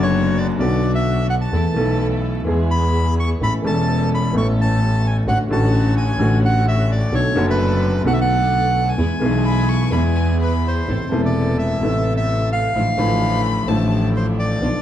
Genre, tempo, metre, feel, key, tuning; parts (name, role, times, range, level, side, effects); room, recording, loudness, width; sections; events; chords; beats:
tango; 129 BPM; 4/4; rubato; A minor from 10.9 s; A4 = 442 Hz
bandoneon; melody; 0.0-14.8 s; B4 to C#6; -23 LUFS; right 1 dB
warm baby grand piano; accompaniment; 0.0-14.8 s; E1 to A4; -20 LUFS; left 1 dB
rich studio string section; stabs; 0.0-14.8 s; E3 to A4; -30 LUFS; right 1 dB
rich double bass; bass; 0.0-14.8 s; E1 to E2; -20 LUFS; equal
clear violin; second line; 9.4-14.0 s; G#5 to C#6; -27 LUFS; left 6 dB
moderate large studio reverb, RT60 1.0 s; dark, warm production, vinyl crackle; -16 LUFS; side -11 dB against mid
0.0-10.9 A section; 10.9-14.8 B section
0.0 Bm; 1.5 Esus4; 2.5 E; 3.4 Aadd9; 5.3 Dmaj7/A; 7.1 Bm7; 9.0 E; 10.9 Amadd9; 12.8 Dmadd9/A
0.13 0.59 1.05 | 1.52 1.99 2.46 2.93 | 3.41 3.88 4.35 4.81 | 5.27 5.73 6.20 6.66 | 7.12 7.59 8.05 8.52 | 8.98 9.45 9.92 10.40 | 10.88 11.35 11.82 12.29 | 12.75 13.21 13.68 14.14 | 14.61